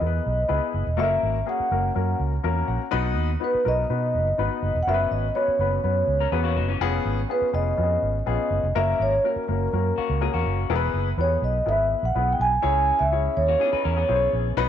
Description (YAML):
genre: soul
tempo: 124 BPM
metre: 4/4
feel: straight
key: unclear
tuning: A4 = 440 Hz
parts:
  - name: vibraphone with soft mallets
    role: melody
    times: 0.0-14.3 s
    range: A#4 to G#5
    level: -24 LUFS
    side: right 1 dB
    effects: none
  - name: warm upright piano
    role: accompaniment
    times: 0.0-14.7 s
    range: A#3 to A#5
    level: -28 LUFS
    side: left 10 dB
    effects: none
  - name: vintage muted fingered electric bass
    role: bass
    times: 0.0-14.7 s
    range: E1 to B2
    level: -25 LUFS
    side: right 2 dB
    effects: none
  - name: electric guitar through a small old amp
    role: riff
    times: 6.2-6.9, 10.0-14.5 s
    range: E3 to B4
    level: -31 LUFS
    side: left 10 dB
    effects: spring reverb
room: light reverb, small room ambience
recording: 1960s-style stereo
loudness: -21 LUFS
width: side -9 dB against mid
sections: 0.0-10.7 A section; 10.7-14.7 B section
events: upright piano fill 2.2-2.9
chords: 0.0 E; 1.0 F#; 2.9 B; 4.9 F#sus4; 6.8 C#7/E#; 8.8 F#; 10.7 E; 12.6 C#m